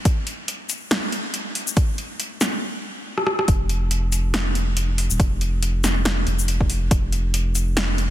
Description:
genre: deep dubstep.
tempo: 140 BPM.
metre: 4/4.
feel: swing 57% on 16ths, half-time.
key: unclear.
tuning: A4 = 436 Hz.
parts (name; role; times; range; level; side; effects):
deep house drum kit; drums; 0.1-8.1 s; hi-hat, rim click, shaker, snare drum; -24 LUFS; equal; overdrive.
electronic kick drum; drums; 0.1-7.0 s; none; -19 LUFS; equal; overdrive.
saturated sub bass; bass; 3.5-8.1 s; Eb1 to F1; -21 LUFS; equal; none.
room: little or no reverb.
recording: dense, heavily limited modern master.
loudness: -20 LUFS.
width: side -13 dB against mid.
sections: 0.0-3.5 A section; 3.5-8.1 B section.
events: build-up 0.0-3.5; stop 2.6-3.5; drum fill 3.2-3.5; drop 3.5-8.1.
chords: none.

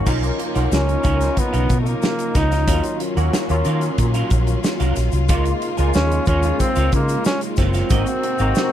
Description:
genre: polished 1980s jazz-funk pop.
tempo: 92 BPM.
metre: 4/4.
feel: straight.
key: unclear.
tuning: A4 = 440 Hz.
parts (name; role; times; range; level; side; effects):
barky tine electric piano; accompaniment; 0.0-8.7 s; Gb3 to Bb4; -24 LUFS; left 1 dB; overdrive, ensemble chorus.
bright studio string section; sustained chords; 0.0-8.7 s; C3 to Bb4; -31 LUFS; left 2 dB; none.
vintage muted fingered electric bass; bass; 0.0-8.5 s; Gb1 to Eb3; -19 LUFS; equal; none.
semi-hollow electric guitar; riff; 0.1-8.6 s; C4 to Ab5; -28 LUFS; right 6 dB; ensemble chorus.
modern studio drum kit; drums; 0.1-8.7 s; crash cymbal, hi-hat, kick drum, snare drum; -22 LUFS; equal; none.
tube shaker; percussion; 0.1-8.7 s; none; -36 LUFS; left 20 dB; none.
breathy flugelhorn; melody; 0.7-8.7 s; A3 to Eb4; -22 LUFS; equal; slapback echo.
room: little or no reverb.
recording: none.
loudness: -16 LUFS.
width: side -11 dB against mid.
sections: 0.1-8.7 A section.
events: none.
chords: 0.1 Cbmaj9#11; 2.7 Ebm9; 5.3 Db6; 7.9 Ab9.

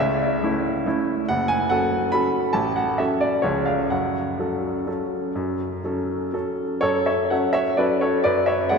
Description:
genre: classical, piano waltz.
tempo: 117-144 BPM.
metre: 3/4.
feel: rubato.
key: F# minor.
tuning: A4 = 440 Hz.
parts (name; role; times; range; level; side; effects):
clear upright piano; solo; 0.0-8.8 s; F#1 to B5; -20 LUFS; equal; none.
room: wet cathedral reverb, RT60 4.5 s.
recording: none.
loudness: -20 LUFS.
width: side -5 dB against mid.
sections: 0.0-6.8 A section; 6.8-8.8 B section.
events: none.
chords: 0.0 A/C#; 1.3 F#m; 2.5 F#m/A; 3.4 C#; 3.9 F#m; 8.3 G#m7b5/F#.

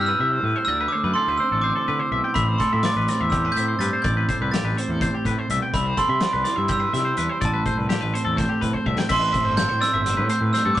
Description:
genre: math rock and midwest emo.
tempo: 250 BPM (eighths).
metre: 7/8.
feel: straight.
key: A minor.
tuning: A4 = 440 Hz.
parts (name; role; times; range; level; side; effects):
glockenspiel with hard plastic mallets; melody; 0.0-10.8 s; A5 to A6; -23 LUFS; right 2 dB; none.
twelve-string electric guitar; accompaniment; 0.0-10.8 s; A2 to G4; -28 LUFS; right 2 dB; none.
twangy electric guitar; arpeggios; 0.0-10.8 s; G4 to G5; -27 LUFS; left 4 dB; none.
fuzz fingered electric bass; bass; 0.0-10.8 s; G1 to D3; -27 LUFS; equal; overdrive.
loose indie drum kit; drums; 2.4-10.8 s; crash cymbal, hi-hat, kick drum, snare drum; -28 LUFS; left 1 dB; none.
room: moderate small room reverb, RT60 0.5 s.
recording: rough rehearsal-room recording, tube saturation, nothing above 10.5 kHz.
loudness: -19 LUFS.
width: side -13 dB against mid.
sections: 0.0-9.1 A section; 9.1-10.8 B section.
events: drum fill 8.7-9.1.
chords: 0.0 Cmaj7; 0.7 D7sus2; 2.4 Am9; 5.7 Cmaj7; 7.4 Am9; 9.1 Am7.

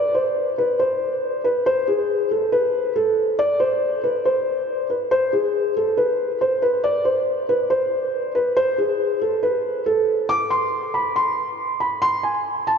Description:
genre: hip hop.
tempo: 139 BPM.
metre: 4/4.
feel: half-time.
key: unclear.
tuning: A4 = 438 Hz.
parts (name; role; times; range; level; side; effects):
felt-muted upright piano; solo; 0.0-12.8 s; G#4 to D6; -18 LUFS; equal; tape echo.
room: wet cathedral reverb, RT60 6.3 s.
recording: dreamy mix soaked in reverb, nothing above 7.7 kHz.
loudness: -18 LUFS.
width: side -6 dB against mid.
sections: 0.0-10.3 A section; 10.3-12.8 B section.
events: none.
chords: none.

